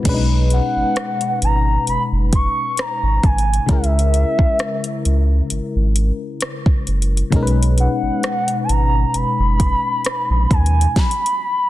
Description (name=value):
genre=contemporary R&B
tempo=66 BPM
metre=4/4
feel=swing 54% on 16ths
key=unclear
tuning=A4 = 440 Hz
part: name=FM electric piano with tremolo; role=accompaniment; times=0.0-11.0 s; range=B2 to B4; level=-23 LUFS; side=left 3 dB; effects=none
part: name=warm sub bass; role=bass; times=0.1-10.9 s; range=F#1 to D#2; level=-17 LUFS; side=equal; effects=none
part: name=smooth R&B drum kit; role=drums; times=0.1-11.4 s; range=crash cymbal, hi-hat, kick drum, rim click, snare drum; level=-19 LUFS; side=equal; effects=soft clipping on snare
part: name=gliding portamento lead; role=melody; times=0.5-11.7 s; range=E5 to C#6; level=-20 LUFS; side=equal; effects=chorus, ping-pong delay
room=little or no reverb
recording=dense, heavily limited modern master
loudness=-15 LUFS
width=side -15 dB against mid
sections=0.1-11.7 A section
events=stop 11.0-11.7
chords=0.1 B69; 3.7 C#m6; 7.3 B69; 11.0 N.C.